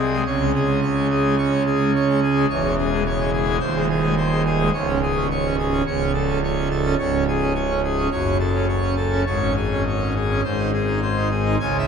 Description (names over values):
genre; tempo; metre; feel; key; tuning
classical, organ toccata; 107 BPM; 4/4; straight; C# minor; A4 = 440 Hz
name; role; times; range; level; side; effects
pipe organ, full organ; solo; 0.0-11.9 s; C#1 to G#5; -18 LUFS; right 1 dB; none
room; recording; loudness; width
wet cathedral reverb, RT60 5.7 s; none; -18 LUFS; side -6 dB against mid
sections
0.0-11.6 A section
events
none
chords
0.3 Db5; 2.5 C#m/E; 3.6 G#/D#; 4.7 C#5; 5.9 A/C#; 7.0 C#5; 8.1 F#m; 9.3 C#5/G#; 10.4 G#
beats
| 0.27 0.82 1.38 1.94 | 2.50 3.05 3.61 4.17 | 4.73 5.29 5.85 6.42 | 6.98 7.54 8.11 8.69 | 9.27 9.86 10.45 11.03 | 11.61